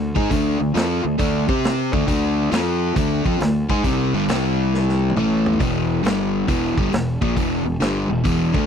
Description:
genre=blues rock power trio and southern rock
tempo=136 BPM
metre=4/4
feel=swing 66% on 8ths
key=unclear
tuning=A4 = 440 Hz
part: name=crunchy overdriven guitar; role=riff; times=0.0-8.7 s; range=E2 to C5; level=-19 LUFS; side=left 1 dB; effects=none
part: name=fuzz fingered electric bass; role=bass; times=0.0-8.7 s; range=E1 to C3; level=-25 LUFS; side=equal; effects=overdrive
part: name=vintage drum kit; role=drums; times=0.2-8.6 s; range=hi-hat, kick drum, snare drum, toms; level=-23 LUFS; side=equal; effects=none
room=little or no reverb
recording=dry, close 1970s-style studio recording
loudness=-17 LUFS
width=side -7 dB against mid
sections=0.0-8.7 A section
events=drum fill 4.7-5.6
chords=0.0 D5; 1.4 C5; 1.9 D5; 2.5 F5; 3.0 D5; 3.8 Gsus4; 4.3 C5; 5.2 A5; 5.6 E5; 6.0 G5; 6.5 E5

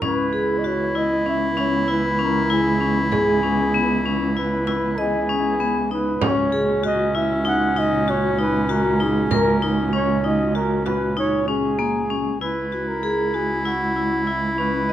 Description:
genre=contemporary instrumental, chamber music in an uneven meter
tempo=97 BPM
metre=5/4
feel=straight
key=C# dorian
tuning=A4 = 440 Hz
part: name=breathy flugelhorn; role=melody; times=0.0-14.9 s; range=E4 to F#5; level=-25 LUFS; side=right 1 dB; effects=none
part: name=bright clarinet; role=second line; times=0.0-14.9 s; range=C#4 to E4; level=-25 LUFS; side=left 1 dB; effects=none
part: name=dark studio string section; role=sustained chords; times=0.0-12.4 s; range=A#2 to F#4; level=-31 LUFS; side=left 1 dB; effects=none
part: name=vibraphone with hard mallets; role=arpeggios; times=0.0-14.9 s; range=A#3 to D#5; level=-24 LUFS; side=left 3 dB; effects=none
part: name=dark cello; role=bass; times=0.0-14.9 s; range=C#2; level=-25 LUFS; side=right 3 dB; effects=none
part: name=frame drum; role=percussion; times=0.0-11.2 s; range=none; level=-28 LUFS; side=right 5 dB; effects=none
room=moderate scoring stage reverb, RT60 2.0 s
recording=none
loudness=-18 LUFS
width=side -11 dB against mid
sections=0.0-12.4 A section; 12.4-14.9 B section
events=none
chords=0.0 C#m7; 6.2 D#m7/C#; 12.4 C#m7

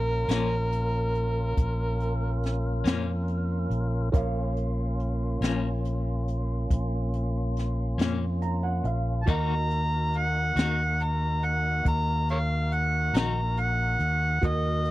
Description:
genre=slow blues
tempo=47 BPM (dotted quarters)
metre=12/8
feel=straight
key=Bb minor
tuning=A4 = 435 Hz
part: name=overdriven harmonica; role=melody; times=0.0-14.9 s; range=Bb4 to Bb5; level=-28 LUFS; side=equal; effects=none
part: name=dark upright piano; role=accompaniment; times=0.0-14.9 s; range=Gb4 to Eb6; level=-38 LUFS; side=right 5 dB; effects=none
part: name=tonewheel organ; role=sustained chords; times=0.0-14.9 s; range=Eb3 to Bb4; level=-35 LUFS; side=equal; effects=slow rotary speaker
part: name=fingered electric bass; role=bass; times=0.0-14.9 s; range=Bb1 to F2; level=-27 LUFS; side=equal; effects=none
part: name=clean electric guitar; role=accompaniment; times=0.3-13.4 s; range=Bb2 to Gb4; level=-31 LUFS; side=left 6 dB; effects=tremolo
part: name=jazz brush drum kit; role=drums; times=0.3-14.9 s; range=hi-hat, kick drum, snare drum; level=-26 LUFS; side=equal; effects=none
room=studio reverb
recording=dry, close 1970s-style studio recording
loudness=-24 LUFS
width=side -16 dB against mid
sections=0.0-14.9 A section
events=upright piano fill 8.0-9.3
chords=0.0 Bbm; 9.3 Ebm

